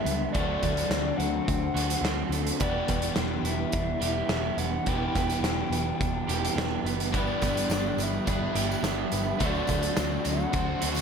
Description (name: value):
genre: rock, shoegaze and dream pop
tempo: 106 BPM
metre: 4/4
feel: straight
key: E minor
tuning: A4 = 440 Hz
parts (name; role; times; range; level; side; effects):
- reedy FM lead; melody; 0.0-11.0 s; D5 to G5; -33 LUFS; equal; chorus, slapback echo
- twelve-string electric guitar; arpeggios; 0.0-11.0 s; E3 to G4; -36 LUFS; right 7 dB; lush chorus, slapback echo
- overdriven semi-hollow guitar; riff; 0.0-11.0 s; E2 to G4; -33 LUFS; left 11 dB; lush chorus
- overdriven semi-hollow guitar; riff; 0.0-11.0 s; D3 to C5; -34 LUFS; right 11 dB; reverse reverb
- vintage muted picked electric bass; bass; 0.1-11.0 s; E1 to D2; -33 LUFS; equal; none
- loose indie drum kit; drums; 0.1-11.0 s; hi-hat, kick drum, snare drum; -31 LUFS; equal; none
- overdriven electric guitar; riff; 7.1-11.0 s; D3 to C5; -34 LUFS; right 1 dB; none
- tambourine; percussion; 7.1-11.0 s; none; -44 LUFS; left 12 dB; none
room: light reverb, small room reverb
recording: none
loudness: -25 LUFS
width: side -6 dB against mid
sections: 0.0-11.0 A section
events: none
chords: 0.4 D7; 2.6 Em7; 7.1 G6; 9.4 D7